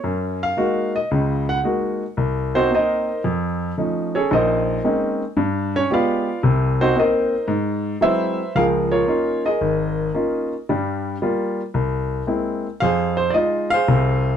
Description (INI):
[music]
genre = solo jazz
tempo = 113 BPM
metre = 4/4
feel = swing 69% on 8ths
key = Db major from 8.5 s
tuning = A4 = 440 Hz
[part]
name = warm baby grand piano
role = solo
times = 0.0-14.4 s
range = Ab1 to Gb5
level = -18 LUFS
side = equal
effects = none
[sound]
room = light reverb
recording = dark, warm production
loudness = -18 LUFS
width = side -8 dB against mid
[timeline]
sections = 0.0-8.5 A section; 8.5-14.4 B section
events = grand piano solo 0.0-8.5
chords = 0.0 Gb69; 2.2 Cm7b5; 3.2 F7alt; 4.3 Bbm11; 5.4 G7b9; 6.4 Cm7b5; 7.5 Ab7alt; 8.5 Db69; 10.7 Gm7; 11.7 Caug7; 12.8 Fm7